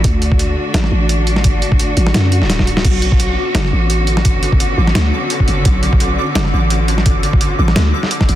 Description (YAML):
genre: half-time drum and bass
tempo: 171 BPM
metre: 4/4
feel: swing 55% on 16ths, half-time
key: B minor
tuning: A4 = 439 Hz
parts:
  - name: rich symphonic cello section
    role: sustained chords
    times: 0.0-8.4 s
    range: D3 to F#4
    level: -20 LUFS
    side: left 1 dB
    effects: vintage 12-bit sampler grit, sidechain pumping
  - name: growling 808-style bass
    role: bass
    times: 0.0-8.4 s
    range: D1 to F#2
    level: -15 LUFS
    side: equal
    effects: none
  - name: boom bap sampler-style drum kit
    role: drums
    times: 0.0-8.4 s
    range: crash cymbal, hi-hat, snare drum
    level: -19 LUFS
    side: equal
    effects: studio reverb
  - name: electronic kick drum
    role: drums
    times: 0.0-8.3 s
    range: none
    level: -14 LUFS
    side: equal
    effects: studio reverb
  - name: pulsing gated texture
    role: texture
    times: 3.4-8.4 s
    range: D3 to D6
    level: -23 LUFS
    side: right 1 dB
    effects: chorus, built-in reverb
room: digital ambience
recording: dense, heavily limited modern master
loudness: -12 LUFS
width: side -13 dB against mid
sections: 0.0-8.4 A section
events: drum fill 2.5-2.8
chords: 0.0 D; 2.8 Bmadd9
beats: | 0.04 0.39 0.74 1.09 | 1.45 1.80 2.15 2.50 | 2.85 3.20 3.55 3.90 | 4.25 4.60 4.95 5.30 | 5.66 6.01 6.36 6.71 | 7.06 7.41 7.76 8.11